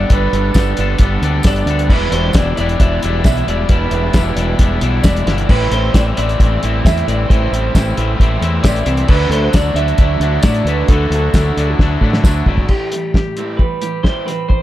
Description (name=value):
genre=indie rock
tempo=134 BPM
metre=4/4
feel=straight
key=A dorian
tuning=A4 = 440 Hz
part: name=electric guitar through a small old amp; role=melody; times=0.0-14.6 s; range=G4 to E5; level=-21 LUFS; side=right 2 dB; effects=spring reverb, slapback echo
part: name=raw garage guitar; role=riff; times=0.0-14.6 s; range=G2 to F#4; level=-23 LUFS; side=right 7 dB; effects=overdrive, wide subtle chorus
part: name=twangy electric guitar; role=riff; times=0.0-14.6 s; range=E2 to A4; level=-22 LUFS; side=left 9 dB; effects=none
part: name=growling fingered electric bass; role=bass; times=0.0-12.6 s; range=E1 to A2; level=-17 LUFS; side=equal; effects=overdrive
part: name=cloth-damped thuddy drum kit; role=drums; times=0.1-14.6 s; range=crash cymbal, hi-hat, kick drum, snare drum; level=-14 LUFS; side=equal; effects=none
part: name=tambourine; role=percussion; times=0.5-12.3 s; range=none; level=-33 LUFS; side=right 5 dB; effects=none
room=light reverb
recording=dark, warm production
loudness=-12 LUFS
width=side -14 dB against mid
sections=0.0-12.7 A section; 12.7-14.6 B section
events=drum fill 11.8-12.7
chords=0.0 Gadd9; 1.9 Em7; 5.5 Am7; 9.1 Dadd9; 12.7 Am7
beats=| 0.10 0.55 1.00 1.45 | 1.90 2.35 2.80 3.25 | 3.70 4.15 4.60 5.05 | 5.50 5.95 6.40 6.85 | 7.29 7.74 8.19 8.64 | 9.09 9.54 9.99 10.44 | 10.89 11.34 11.79 12.24 | 12.69 13.14 13.59 14.05 | 14.50